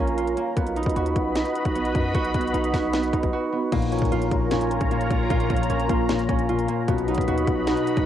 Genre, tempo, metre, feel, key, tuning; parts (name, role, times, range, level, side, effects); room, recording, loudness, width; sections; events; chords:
hip hop, trap; 152 BPM; 4/4; half-time; Bb phrygian; A4 = 440 Hz
sweeping resonant pad; sustained chords; 0.0-8.1 s; F4 to B5; -27 LUFS; equal; chorus, cassette tape
concert harp; arpeggios; 0.0-8.1 s; Bb3 to F#4; -26 LUFS; right 6 dB; cassette tape, analog delay
hard-hitting 808-style bass; bass; 0.0-8.1 s; Bb1 to F#2; -29 LUFS; left 1 dB
trap drum kit; drums; 0.1-8.1 s; crash cymbal, hi-hat, kick drum, snare drum; -26 LUFS; left 1 dB; cassette tape
dark concert grand piano; accompaniment; 3.7-8.1 s; Bb2 to B3; -26 LUFS; left 8 dB; cassette tape
little or no reverb; home recording on cassette; -21 LUFS; side -10 dB against mid
0.0-3.7 A section; 3.7-8.1 B section
break 3.3-3.7
0.0 Bbm; 0.6 B; 3.7 Bbm; 6.9 B